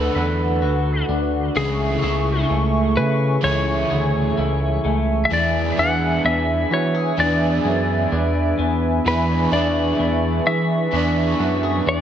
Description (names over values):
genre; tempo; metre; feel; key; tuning
dream pop; 64 BPM; 4/4; straight; unclear; A4 = 440 Hz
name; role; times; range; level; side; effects
clean lap steel guitar; melody; 0.0-12.0 s; G#4 to F#5; -24 LUFS; left 1 dB; digital delay
crunchy overdriven guitar; accompaniment; 0.0-12.0 s; C#3 to B4; -26 LUFS; right 4 dB; tremolo, wide subtle chorus
hollow soft pad; sustained chords; 0.0-12.0 s; A3 to C#6; -25 LUFS; right 1 dB; chorus
electric guitar at the edge of break-up; arpeggios; 0.0-12.0 s; C#3 to B4; -24 LUFS; left 3 dB; wide subtle chorus, digital delay
fat analog bass; bass; 0.0-12.0 s; C#2 to E3; -22 LUFS; right 1 dB; none
room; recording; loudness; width
moderate lush hall reverb, RT60 2.1 s; none; -17 LUFS; side -9 dB against mid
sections
0.0-12.0 A section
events
none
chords
0.0 D6; 1.6 Amaj7/C#; 5.3 E7